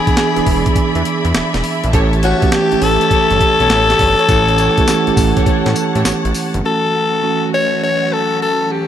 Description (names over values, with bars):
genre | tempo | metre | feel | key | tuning
R&B, new jack swing | 102 BPM | 4/4 | swing 67% on 16ths | unclear | A4 = 440 Hz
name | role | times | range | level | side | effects
growling alto saxophone | melody | 0.0-8.9 s | F#4 to C#5 | -15 LUFS | left 4 dB | none
bell-like tine electric piano | accompaniment | 0.0-8.9 s | E3 to B5 | -18 LUFS | right 6 dB | auto-pan
warm studio string section | sustained chords | 0.0-8.9 s | E3 to B5 | -22 LUFS | left 2 dB | none
breakbeat sampler-style drum kit | drums | 0.1-6.6 s | hi-hat, kick drum, snare drum, tambourine | -18 LUFS | equal | none
fat analog bass | bass | 0.4-6.6 s | E1 to A2 | -18 LUFS | equal | none
dark studio string section | stabs | 1.9-6.1 s | G4 to C#5 | -24 LUFS | equal | none
room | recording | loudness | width
light reverb, small room ambience | none | -12 LUFS | side -10 dB against mid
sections
0.0-6.6 A section; 6.6-8.9 B section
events
tine electric piano fill 0.2-1.9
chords
0.0 E7; 1.9 A7; 6.6 F#m7